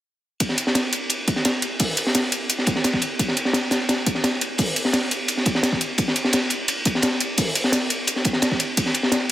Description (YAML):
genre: liquid drum and bass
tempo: 172 BPM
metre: 4/4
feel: straight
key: none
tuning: none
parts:
  - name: crunchy breakbeat drum kit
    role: drums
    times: 0.4-9.3 s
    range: hi-hat, ride cymbal, snare drum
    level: -21 LUFS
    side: equal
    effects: high-pass filter on cymbals, high-pass filter on hats, high-pass filter on snare, high-pass filter on room
  - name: electronic hi-hat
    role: drums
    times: 0.4-9.3 s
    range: none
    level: -24 LUFS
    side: right 1 dB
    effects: overdrive
  - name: electronic kick drum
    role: drums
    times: 0.4-8.8 s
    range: none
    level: -24 LUFS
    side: equal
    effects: overdrive, high-pass filter on kick, high-pass filter on room
room: light reverb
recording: none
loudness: -19 LUFS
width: side -14 dB against mid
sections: 0.4-9.3 A section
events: none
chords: none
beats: | 0.40 0.75 1.10 1.45 | 1.80 2.15 2.50 2.85 | 3.19 3.54 3.89 4.24 | 4.59 4.94 5.29 5.64 | 5.99 6.33 6.68 7.03 | 7.38 7.73 8.08 8.43 | 8.78 9.12